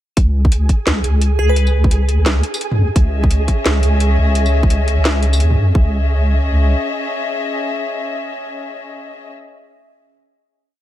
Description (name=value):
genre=half-time drum and bass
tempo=172 BPM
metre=4/4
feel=swing 60% on 16ths, half-time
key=C# minor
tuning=A4 = 441 Hz
part: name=deep soft wobble bass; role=bass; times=0.2-6.8 s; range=C#2 to F#2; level=-14 LUFS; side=equal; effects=chorus, tube saturation
part: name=drum and bass drum kit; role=drums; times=0.2-5.6 s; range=hi-hat, snare drum, tambourine, toms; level=-20 LUFS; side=equal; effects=none
part: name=electronic kick drum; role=drums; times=0.2-5.8 s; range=none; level=-14 LUFS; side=equal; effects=none
part: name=flickering grainy texture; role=texture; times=0.4-5.8 s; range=G#4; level=-26 LUFS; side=right 4 dB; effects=built-in reverb
part: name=glassy wavetable pluck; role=melody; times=1.4-1.7 s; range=G#4 to B4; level=-24 LUFS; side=left 2 dB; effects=chorus, dub echo
part: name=warm chamber string section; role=sustained chords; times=3.0-9.3 s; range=C#4 to E5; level=-22 LUFS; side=left 3 dB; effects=sidechain pumping
room=digital ambience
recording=none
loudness=-13 LUFS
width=side -13 dB against mid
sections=0.2-5.7 drop; 5.7-8.5 final chord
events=drop 0.2-5.7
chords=0.2 C#madd9